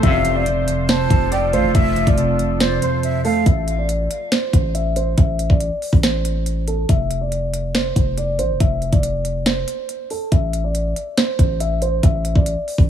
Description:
hip hop, trap; 140 BPM; 4/4; half-time; A minor; A4 = 440 Hz
dark baby grand piano; melody; 0.0-12.9 s; A4 to E5; -23 LUFS; equal; low-pass filter
breathy jazz flute; second line; 0.0-3.5 s; C5 to A5; -26 LUFS; right 6 dB; tape echo
mellow electric guitar; accompaniment; 0.0-3.5 s; F2 to A3; -22 LUFS; right 2 dB; low-pass filter
deep dark ambient pad; sustained chords; 0.0-3.4 s; F3 to C5; -28 LUFS; equal; chorus, built-in reverb
hard-hitting 808-style bass; bass; 0.0-12.9 s; F1 to A1; -22 LUFS; equal
trap drum kit; drums; 0.0-12.9 s; hi-hat, kick drum, snare drum; -17 LUFS; equal; overdrive
little or no reverb; -16 LUFS; side -9 dB against mid
0.0-3.5 A section; 3.5-12.9 B section
filter sweep 3.5-12.9
0.0 F; 3.5 Am; 6.9 F5; 10.3 Am
| 0.03 0.46 0.89 1.32 | 1.75 2.18 2.60 3.03 | 3.46 3.89 4.32 4.75 | 5.18 5.61 6.03 6.46 | 6.89 7.32 7.75 8.18 | 8.61 9.03 9.46 9.89 | 10.32 10.75 11.18 11.61 | 12.03 12.46 12.89

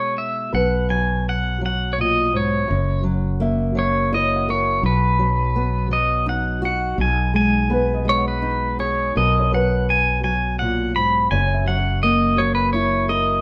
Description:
acoustic folk-pop ballad; 84 BPM; 3/4; straight; B major; A4 = 440 Hz
pedal steel guitar; melody; 0.0-13.4 s; B4 to B5; -23 LUFS; equal
fingerpicked steel-string acoustic guitar; accompaniment; 0.0-13.4 s; F#2 to A#4; -26 LUFS; equal
felt-muted upright piano; arpeggios; 0.5-13.4 s; A#4 to F#5; -29 LUFS; equal
mellow fretless electric bass; bass; 0.5-13.4 s; F#1 to B1; -25 LUFS; equal
moderate stone room reverb, RT60 1.1 s; band playing live in one room; -20 LUFS; mono
0.5-13.4 A section
0.0 G#m/B; 0.5 B5; 2.7 F#7; 4.8 B; 7.0 G#m/B; 9.2 B5; 11.3 F#7
| 0.53 1.25 1.97 | 2.69 3.41 4.12 | 4.84 5.55 6.27 | 6.98 7.70 8.43 | 9.15 9.88 10.59 | 11.31 12.03 12.74

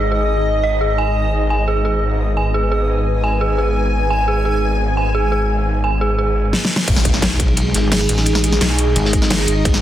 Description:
dark technical drum and bass; 173 BPM; 4/4; straight; G# minor; A4 = 440 Hz
dark analog pad; sustained chords; 0.0-9.8 s; G#3 to B4; -24 LUFS; equal; chorus, sidechain pumping
dark detuned synth bell; arpeggios; 0.0-6.3 s; G#4 to G#5; -21 LUFS; right 4 dB; chorus, sidechain pumping, tape echo
snarling distorted saw bass; bass; 0.0-9.8 s; G#1 to B1; -19 LUFS; equal; distortion, overdrive, sidechain pumping
granular cloud pad; texture; 0.0-9.8 s; D#4 to G#5; -24 LUFS; left 1 dB; built-in reverb, sidechain pumping
dubstep drum kit; drums; 6.5-9.8 s; crash cymbal, hi-hat, snare drum; -19 LUFS; left 1 dB
crunchy breakbeat drum kit; drums; 6.9-9.8 s; hi-hat, ride cymbal, snare drum; -25 LUFS; equal; high-pass filter on cymbals, high-pass filter on hats, high-pass filter on snare, high-pass filter on room
electronic kick drum; drums; 6.9-9.7 s; -18 LUFS; equal; distortion
impact; sound effects; 6.9-8.3 s; -25 LUFS; equal
pulsing pluck wobble bass; bass; 7.2-9.6 s; G#1 to B1; -18 LUFS; equal; chorus
light reverb; dense, heavily limited modern master; -14 LUFS; side -12 dB against mid
0.0-6.9 A section; 6.9-9.8 B section
filter sweep on synth bell 0.0-6.9; drum fill 6.5-6.9; drop 6.9-9.8; impact 6.9-8.3
0.0 G#5
0.29 0.64 0.98 | 1.33 1.68 2.02 2.37 | 2.72 3.06 3.41 3.76 | 4.10 4.45 4.80 5.14 | 5.49 5.84 6.18 6.53 | 6.88 7.22 7.57 7.92 | 8.27 8.61 8.96 9.31 | 9.65

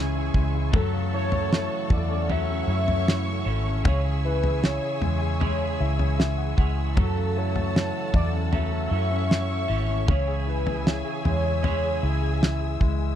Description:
pop ballad; 77 BPM; 4/4; straight; F# minor; A4 = 440 Hz
warm velvety synth lead; melody; 0.0-12.8 s; A4 to E5; -30 LUFS; equal; chorus, slapback echo
warm studio violin section; second line; 0.0-13.2 s; G#4 to C#6; -36 LUFS; right 3 dB
clear grand piano; accompaniment; 0.0-13.2 s; C#3 to F#5; -32 LUFS; left 17 dB
warm studio string section; sustained chords; 0.0-13.2 s; G#4 to E6; -38 LUFS; right 1 dB
twelve-string electric guitar; arpeggios; 0.0-13.2 s; F#2 to A4; -34 LUFS; right 16 dB
vintage muted fingered electric bass; bass; 0.0-13.2 s; G#1 to F#2; -26 LUFS; equal
damped 70s drum kit; drums; 0.3-13.0 s; kick drum, snare drum, toms; -23 LUFS; equal
little or no reverb; dry, close 1970s-style studio recording; -22 LUFS; side -10 dB against mid
0.0-13.2 A section
grand piano fill 5.4-7.0
0.0 C#m; 0.7 F#m7; 3.8 C#m; 7.0 F#m7; 10.1 C#m
| 0.73 1.51 2.29 3.07 | 3.85 4.63 5.41 6.19 | 6.96 7.74 8.52 9.30 | 10.08 10.86 11.64 12.42

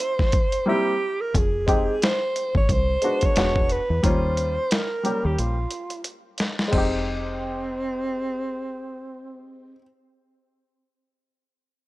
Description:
hip hop, jazz-hop; 89 BPM; 4/4; swing 57% on 16ths; F minor; A4 = 440 Hz
mellow alto saxophone; melody; 0.0-9.8 s; C4 to Db5; -26 LUFS; right 1 dB
dusty soul sampler-style drum kit; drums; 0.0-6.9 s; crash cymbal, hi-hat, kick drum, snare drum; -23 LUFS; equal; overdrive
clear upright piano; accompaniment; 0.7-9.8 s; G3 to G4; -27 LUFS; left 1 dB
deep dub fingered electric bass; bass; 1.3-9.8 s; E1 to E2; -26 LUFS; equal
digital ambience; -21 LUFS; side -18 dB against mid
0.0-1.3 A section; 1.3-6.7 B section; 6.7-9.4 C section
break 0.0-1.3; silent gap 0.7-1.3; drum fill 5.4-6.7
0.0 N.C.; 0.7 C7; 1.3 Fm9; 3.4 E9; 4.0 Eb9; 6.7 Fm9
0.67 | 1.34 2.02 2.69 3.37 | 4.04 4.71 5.39 6.06 | 6.74 7.41 8.09 8.76

